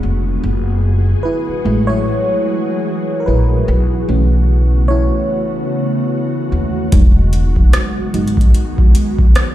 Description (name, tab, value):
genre	contemporary R&B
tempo	74 BPM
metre	4/4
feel	swing 58% on 16ths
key	E major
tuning	A4 = 439 Hz
part	mellow FM electric piano	accompaniment	0.0-9.5 s	E3 to C#5	-19 LUFS	equal	chorus
part	ethereal airy pad	sustained chords	0.0-9.5 s	C#3 to Ab4	-21 LUFS	equal	ensemble chorus, built-in reverb
part	upright bass	bass	0.0-8.5 s	E1 to D#2	-15 LUFS	equal	none
part	booming analog drum machine	drums	6.9-9.5 s	hi-hat, kick drum, rim click	-10 LUFS	equal	none
room	little or no reverb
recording	played on a big sound system in a bare room, large studio reverb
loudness	-12 LUFS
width	side -14 dB against mid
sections	0.0-9.5 A section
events	FM electric piano solo 0.0-9.5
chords	0.4 F#m9; 3.7 B9sus4; 6.9 Emaj7